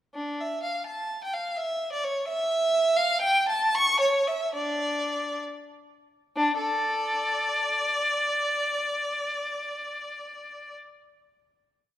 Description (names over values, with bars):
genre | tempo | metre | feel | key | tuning
classical, baroque-style suite movement for unaccompanied violin | 62-87 BPM (dotted quarters) | 6/8 | rubato | D minor | A4 = 440 Hz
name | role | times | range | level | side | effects
rich violin | solo | 0.1-10.8 s | D4 to C#6 | -24 LUFS | equal | none
room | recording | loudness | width
moderate concert hall reverb, RT60 1.8 s | none | -24 LUFS | side -12 dB against mid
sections
0.1-6.4 A section; 6.4-10.0 final chord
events
slowing down 2.3-6.4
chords
none